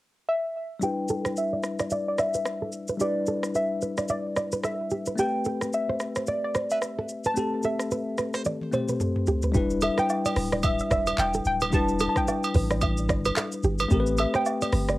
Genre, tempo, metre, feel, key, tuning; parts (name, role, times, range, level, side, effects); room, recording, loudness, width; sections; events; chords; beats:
afrobeats; 110 BPM; 4/4; swing 58% on 16ths; E minor; A4 = 440 Hz
soft round pluck; melody; 0.3-15.0 s; D5 to A5; -29 LUFS; equal; chorus, low-pass filter, cassette tape
bell-like tine electric piano; accompaniment; 0.8-15.0 s; G3 to C5; -30 LUFS; left 3 dB; low-pass filter, cassette tape
nylon-string guitar; riff; 0.8-15.0 s; G4 to E5; -30 LUFS; right 2 dB; low-pass filter, cassette tape
afro-pop drum kit; drums; 0.8-15.0 s; handclaps, hi-hat, kick drum, rim click, shaker, toms; -29 LUFS; equal; cassette tape
punchy sub bass; bass; 9.5-15.0 s; D1 to A1; -28 LUFS; equal
agogo bells and woodblock; percussion; 9.8-14.7 s; -31 LUFS; right 3 dB
light reverb; home recording on cassette; -24 LUFS; side -17 dB against mid
0.8-9.5 A section; 9.5-15.0 B section
filter sweep 0.8-9.5; drum fill 8.5-9.5
0.0 N.C.; 0.8 Em7; 5.2 Am9; 9.5 Em7; 13.9 Am9
0.27 | 0.82 1.36 1.91 2.46 | 3.00 3.55 4.09 4.64 | 5.18 5.73 6.27 6.82 | 7.36 7.91 8.46 9.00 | 9.55 10.09 10.64 11.18 | 11.73 12.27 12.82 13.36 | 13.91 14.46